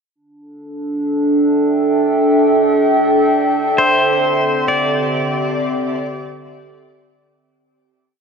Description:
ambient; free time; A4 = 437 Hz
warbly tape-like pad; sustained chords; 0.7-7.4 s; D3 to G5; -15 LUFS; right 1 dB; chorus, built-in reverb
pedal steel guitar; melody; 3.8-6.9 s; C5 to D5; -17 LUFS; equal; ping-pong delay
wet shimmer reverb, RT60 8.5 s; worn, warbling old tape, cassette tape, warbly pitch drift; -13 LUFS; side -5 dB against mid
0.1-7.4 A section
fade-out 3.8-7.4
0.1 Dsus4; 3.8 Cadd9/D
free time

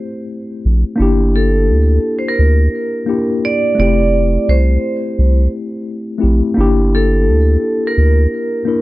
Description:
lo-fi hip hop; 86 BPM; 4/4; swing 65% on 16ths; G dorian; A4 = 440 Hz
tine electric piano; accompaniment; 0.0-8.8 s; A3 to Bb4; -17 LUFS; left 2 dB; medium stereo tremolo, cassette tape, low-pass filter
soft dub sub bass; bass; 0.7-8.3 s; F1 to D2; -12 LUFS; equal
vibraphone with hard mallets; melody; 1.4-8.8 s; A4 to D5; -18 LUFS; right 3 dB; low-pass filter
little or no reverb; dark, warm production; -12 LUFS; side -18 dB against mid
0.0-8.8 A section
0.0 Fmaj9 (rootless); 1.0 Gm69; 3.8 Fmaj9; 6.6 Gm69
0.29 | 0.99 1.69 2.39 3.09 | 3.78 4.48 5.18 5.88 | 6.57 7.27 7.97 8.67

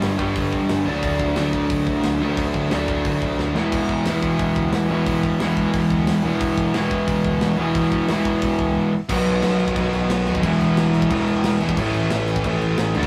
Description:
punk rock; 179 BPM; 4/4; straight; A4 = 438 Hz
overdriven electric guitar; riff; 0.0-13.1 s; E2 to D4; -24 LUFS; equal
raw garage guitar; riff; 0.0-13.1 s; G2 to F#4; -25 LUFS; equal; overdrive
overdriven picked electric bass; bass; 0.0-13.1 s; E1 to D#2; -31 LUFS; equal
tight metal drum kit; drums; 0.0-13.1 s; crash cymbal, hi-hat, kick drum, snare drum; -30 LUFS; equal
light reverb; rough rehearsal-room recording; -20 LUFS; mono
0.0-9.1 A section; 9.1-13.1 B section
drum fill 3.4-3.7
0.0 G; 0.9 D; 3.6 E; 9.1 B; 10.4 E; 11.8 A
0.03 0.37 0.70 | 1.04 1.37 1.71 2.04 | 2.38 2.72 3.05 3.39 | 3.72 4.06 4.40 4.73 | 5.07 5.40 5.74 6.07 | 6.41 6.75 7.08 7.42 | 7.75 8.09 8.42 8.76 | 9.10 9.43 9.77 10.10 | 10.44 10.77 11.11 11.44 | 11.78 12.11 12.45 12.78

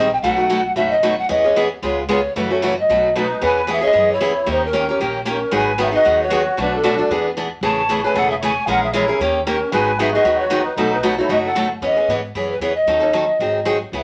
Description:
acoustic string swing (jazz manouche); 228 BPM; 4/4; swing 55% on 8ths; E major; A4 = 440 Hz
mellow hollow polished pan flute; melody; 0.0-14.0 s; A4 to A5; -21 LUFS; equal
picked steel-string acoustic guitar; accompaniment; 0.0-14.0 s; B2 to A#4; -22 LUFS; equal
upright bass; bass; 0.0-14.0 s; E1 to G#2; -34 LUFS; equal
musette accordion; second line; 3.2-11.7 s; C#4 to C#5; -27 LUFS; equal
wet studio reverb, RT60 0.5 s; -18 LUFS; mono
0.0-3.4 A section; 3.4-11.8 B section; 11.8-14.0 A section
0.2 B7; 1.3 E6; 1.8 C#7; 2.4 F#m7; 2.9 B7; 3.4 E6; 4.5 D#7; 5.5 G#m7; 6.6 Bm7; 7.1 E7; 7.6 Amaj7; 8.7 A#m7b5; 9.2 D#7; 9.7 G#m7; 10.8 B7; 11.8 E6; 12.9 D#m7b5; 13.4 G#7
| 0.24 0.51 0.77 1.03 | 1.30 1.57 1.83 2.10 | 2.36 2.63 2.89 3.16 | 3.42 3.69 3.95 4.21 | 4.48 4.74 5.00 5.26 | 5.53 5.79 6.05 6.32 | 6.58 6.84 7.10 7.37 | 7.63 7.89 8.15 8.41 | 8.68 8.94 9.20 9.46 | 9.72 9.99 10.25 10.51 | 10.77 11.04 11.30 11.56 | 11.82 12.09 12.35 12.61 | 12.88 13.14 13.40 13.67 | 13.93

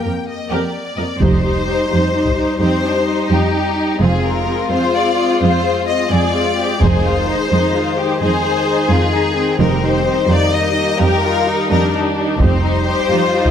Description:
cinematic, epic orchestral film score; 86 BPM (dotted quarters); 12/8; straight; A4 = 440 Hz
clear symphonic violin section; melody; 0.0-13.5 s; G4 to G5; -20 LUFS; left 4 dB
warm symphonic violin section; second line; 0.0-13.5 s; Bb3 to Eb5; -21 LUFS; left 4 dB
warm symphonic viola section; accompaniment; 0.0-13.5 s; C4 to Bb4; -21 LUFS; right 1 dB
mellow French horn section; sustained chords; 0.0-13.5 s; Eb3 to F4; -24 LUFS; left 3 dB
warm symphonic cello section; bass; 0.0-13.5 s; F2; -20 LUFS; right 2 dB
clear studio double bass section; bass; 1.2-12.8 s; F1; -20 LUFS; right 3 dB
taiko ensemble; drums; 1.2-2.5, 6.8-7.7, 12.4-13.5 s; -18 LUFS; equal
moderate concert hall reverb, RT60 2.4 s; close, detailed microphones; -13 LUFS; side -8 dB against mid
0.0-1.2 A section; 1.2-13.5 A section
0.0 Eb/F; 1.2 Cm/F; 4.0 Fm; 6.8 Ab/F; 9.6 Eb/F
0.52 | 1.22 1.92 2.62 3.32 | 4.02 4.72 5.42 6.12 | 6.81 7.51 8.21 8.91 | 9.61 10.31 11.01 11.71 | 12.40 13.10

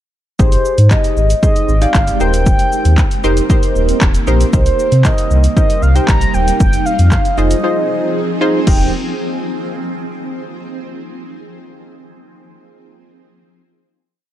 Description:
dance-pop; 116 BPM; 4/4; straight; Eb major; A4 = 441 Hz
mellow horn-like synth lead; melody; 0.4-8.9 s; C5 to Bb5; -19 LUFS; right 1 dB; chorus
funky polysynth comp; accompaniment; 0.4-8.9 s; Eb4 to Eb5; -19 LUFS; equal; chorus, sidechain pumping
shimmering ambient pad; sustained chords; 1.2-8.9 s; C3 to G5; -22 LUFS; right 1 dB; chorus, built-in reverb, phaser, sidechain pumping
sub bass with octave; bass; 0.4-8.9 s; Eb1 to C3; -13 LUFS; equal; sidechain pumping
punchy analog drum machine; drums; 0.4-8.8 s; crash cymbal, handclaps, hi-hat, kick drum, shaker; -14 LUFS; equal
little or no reverb; dark, warm production; -11 LUFS; side -12 dB against mid
0.4-8.7 chorus; 8.7-10.7 final chord
break 7.6-8.7
0.4 Abmaj7; 2.2 Eb6; 4.5 Cm7; 6.6 Fm7; 8.7 Eb6
| 0.40 0.91 1.43 1.95 | 2.46 2.98 3.50 4.02 | 4.53 5.05 5.57 6.08 | 6.60 7.12 7.64 8.15 | 8.67

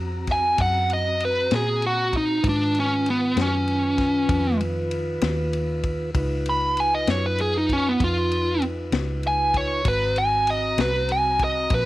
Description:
slow blues; 65 BPM (dotted quarters); 12/8; straight; A4 = 440 Hz
mellow tonewheel organ; sustained chords; 0.0-11.9 s; Eb3 to Bb5; -31 LUFS; equal; slow rotary speaker
vintage muted fingered electric bass; bass; 0.0-11.9 s; Ab1 to Bb2; -27 LUFS; equal
dark smooth lead guitar; melody; 0.3-11.9 s; Cb4 to Cb6; -21 LUFS; equal; overdrive
natural country drum kit; drums; 0.3-11.9 s; kick drum, ride cymbal, snare drum; -29 LUFS; left 2 dB
light reverb, small room ambience; 1960s-style stereo; -20 LUFS; side -16 dB against mid
0.0-11.9 A section
lead electric guitar solo 0.0-11.9
0.0 Ab9; 2.4 Db9; 9.9 Ab9
0.59 1.52 | 2.44 3.37 4.30 5.22 | 6.15 7.08 8.01 8.93 | 9.86 10.79 11.71

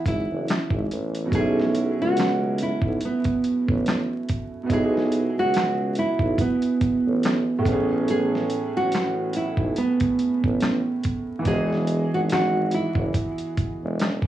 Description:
lo-fi hip hop; 71 BPM; 4/4; swing 58% on 16ths; E major; A4 = 440 Hz
nylon-string guitar; melody; 0.0-14.3 s; B3 to G#4; -24 LUFS; right 2 dB; tape echo
warm upright piano; accompaniment; 0.0-14.3 s; A2 to D#5; -28 LUFS; right 2 dB
warm tuba; bass; 0.1-14.2 s; E1 to C#2; -27 LUFS; equal
dusty soul sampler-style drum kit; drums; 0.1-14.3 s; handclaps, hi-hat, kick drum, snare drum; -26 LUFS; equal; overdrive, vintage 12-bit sampler grit
light reverb; vinyl crackle, studio reverb; -21 LUFS; side -12 dB against mid
0.0-1.3 A section; 1.3-14.3 B section
0.0 Emaj7; 1.3 B7sus4; 4.7 Emaj9/B; 7.7 Amaj9; 11.5 Emaj7
0.47 | 1.32 2.16 3.01 3.85 | 4.70 5.54 6.39 7.23 | 8.08 8.92 9.77 10.61 | 11.46 12.30 13.15 13.99

